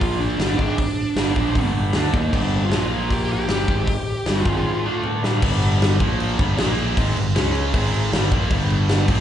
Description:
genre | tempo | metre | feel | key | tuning
hard rock | 155 BPM | 4/4 | straight | G minor | A4 = 440 Hz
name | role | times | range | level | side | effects
high-gain lead guitar | melody | 0.0-5.0 s | Bb3 to G4 | -25 LUFS | right 2 dB | distortion, slapback echo
cranked stack guitar | riff | 0.0-9.2 s | G2 to Eb4 | -23 LUFS | equal | overdrive
fuzz fingered electric bass | bass | 0.0-9.2 s | G1 to Eb2 | -23 LUFS | equal | overdrive
big rock drum kit | drums | 0.0-9.2 s | crash cymbal, hi-hat, kick drum, snare drum, toms | -22 LUFS | equal | none
room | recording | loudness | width
light reverb | live gig heard through the venue's PA, club reverb, nothing above 10.7 kHz | -18 LUFS | side -10 dB against mid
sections
0.0-5.4 A section; 5.4-9.2 B section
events
drum fill 5.0-5.4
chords
0.4 Gm; 2.7 Bb5; 3.5 G5; 4.5 Ab5; 4.8 D5; 5.2 G5; 6.0 Bb5; 6.4 G5; 6.6 Bb5; 7.0 G5; 7.4 C#5; 7.7 Ab5; 8.1 Gm

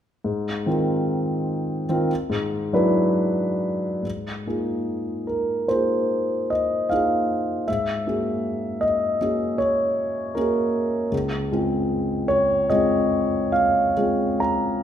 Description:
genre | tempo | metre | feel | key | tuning
classical, impressionist solo piano | 43-53 BPM (dotted quarters) | 9/8 | rubato | Ab major | A4 = 440 Hz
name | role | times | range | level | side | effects
warm concert grand piano | solo | 0.2-14.8 s | Db2 to Bb5 | -20 LUFS | equal | none
room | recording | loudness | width
moderate recital hall reverb, RT60 1.5 s | minimal, uncompressed stereo recording | -20 LUFS | side -9 dB against mid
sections
0.3-4.0 A section; 4.0-14.8 B section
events
none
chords
0.3 Ab69; 2.1 E9/G#; 4.0 Ab69; 7.7 Gb9/Ab; 11.1 Dbmaj7

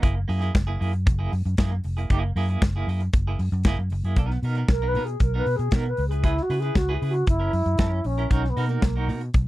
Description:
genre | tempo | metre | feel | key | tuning
disco | 116 BPM | 4/4 | straight | unclear | A4 = 440 Hz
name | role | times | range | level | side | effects
clean electric guitar | accompaniment | 0.0-9.4 s | A#3 to B4 | -32 LUFS | right 5 dB | tremolo
fingered electric bass | bass | 0.0-9.5 s | E#1 to C#3 | -24 LUFS | equal | none
modern studio drum kit | drums | 0.0-9.5 s | hi-hat, kick drum, snare drum | -21 LUFS | equal | none
reedy wooden-headed alto flute | melody | 4.7-9.2 s | A#3 to B4 | -27 LUFS | equal | none
room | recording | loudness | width
little or no reverb | dry, close 1970s-style studio recording | -21 LUFS | side -17 dB against mid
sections
0.0-4.2 A section; 4.2-9.5 B section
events
alto flute solo 4.2-9.5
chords
0.0 F#9; 4.2 Bmaj7; 6.0 C#m7; 7.3 F#7; 8.3 Bmaj7

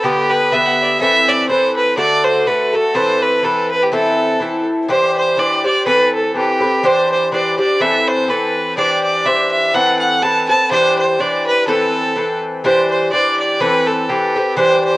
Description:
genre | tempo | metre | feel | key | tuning
celtic folk, Celtic polka | 124 BPM | 2/4 | swing 55% on 8ths | A dorian | A4 = 440 Hz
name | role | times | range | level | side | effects
clear fiddle | melody | 0.0-15.0 s | G4 to A5 | -15 LUFS | right 1 dB | cassette tape
Irish bouzouki | accompaniment | 0.0-15.0 s | D3 to C5 | -17 LUFS | left 1 dB | cassette tape
room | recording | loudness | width
moderate spring reverb, RT60 2.2 s | home recording on cassette | -13 LUFS | side -18 dB against mid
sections
0.0-4.9 A section; 4.9-12.6 B section; 12.6-15.0 B section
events
none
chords
0.0 G; 1.0 Amadd9; 2.0 D; 3.0 Amadd9; 3.9 Am; 4.9 Cadd9; 5.9 Amadd9; 6.8 Cadd9; 7.8 Amadd9; 8.8 Cadd9; 9.7 Amadd9; 10.7 Cadd9; 11.7 Amadd9; 12.6 Cadd9; 13.6 Amadd9

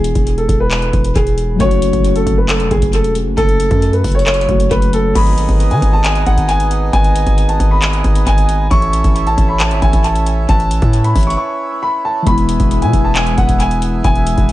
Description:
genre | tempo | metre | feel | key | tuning
hip hop, trap | 135 BPM | 4/4 | half-time | G# phrygian | A4 = 440 Hz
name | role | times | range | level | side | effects
dark concert grand piano | melody | 0.0-14.5 s | G#4 to C#6 | -18 LUFS | equal | tape echo
muted felt-like synth keys | accompaniment | 0.0-5.2, 12.2-14.5 s | E3 to F#4 | -20 LUFS | left 4 dB | chorus, tape echo
hard-hitting 808-style bass | bass | 0.0-14.5 s | E1 to D#3 | -16 LUFS | equal | none
booming analog drum machine | drums | 0.0-14.5 s | crash cymbal, handclaps, hi-hat, kick drum | -16 LUFS | equal | vintage 12-bit sampler grit
pedal harmonium | sustained chords | 5.2-14.5 s | B3 to E5 | -23 LUFS | right 4 dB | none
room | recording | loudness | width
digital ambience | echo-heavy mix | -11 LUFS | side -16 dB against mid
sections
0.0-5.2 A section; 5.2-14.5 B section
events
break 11.4-12.3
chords
0.0 E; 1.6 F#m; 5.2 G#m; 8.7 A; 12.3 E

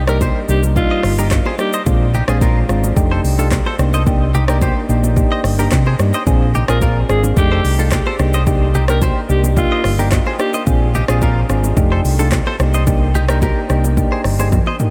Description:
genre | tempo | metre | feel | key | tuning
afrobeats | 109 BPM | 4/4 | straight | C minor | A4 = 440 Hz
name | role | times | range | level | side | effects
direct-recorded clean electric guitar | riff | 0.0-14.8 s | Eb4 to Eb5 | -26 LUFS | equal | analog chorus, diffuse ambient delay
fingered electric bass | bass | 0.0-14.6 s | F1 to C3 | -18 LUFS | equal | none
growling alto saxophone | melody | 0.1-1.7, 6.7-10.5 s | F4 to Bb4 | -26 LUFS | equal | diffuse ambient delay
soft electric-piano-like synth keys | accompaniment | 0.1-14.9 s | G3 to Ab4 | -23 LUFS | equal | chorus
deep house drum kit | drums | 0.1-14.9 s | handclaps, hi-hat, kick drum, rim click, shaker, toms | -21 LUFS | equal | none
bongos and congas | percussion | 0.2-14.8 s | none | -28 LUFS | equal | none
room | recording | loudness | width
moderate huge ambient reverb, RT60 8.0 s | dreamy mix soaked in reverb | -15 LUFS | mono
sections
0.0-14.9 A section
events
drum fill 14.5-14.9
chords
0.0 Cm9; 1.9 Bb9; 3.0 F13; 3.8 Cm9; 6.3 Bb9; 7.4 F13; 8.2 Cm9; 10.7 Bb9; 11.8 F13; 12.6 Cm9

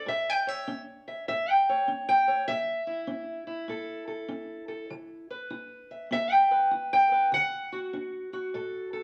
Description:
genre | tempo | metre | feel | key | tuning
acoustic country blues, solo or duo | 99 BPM | 4/4 | swing 65% on 8ths | A mixolydian | A4 = 440 Hz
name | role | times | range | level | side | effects
fingerpicked steel-string acoustic guitar | solo | 0.0-9.0 s | A2 to G5 | -28 LUFS | equal | none
room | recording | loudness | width
moderate large studio reverb, RT60 0.9 s | none | -28 LUFS | mono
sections
0.0-9.0 A section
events
steel-string acoustic guitar solo 0.0-9.0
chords
0.1 A; 4.9 E5; 7.3 D

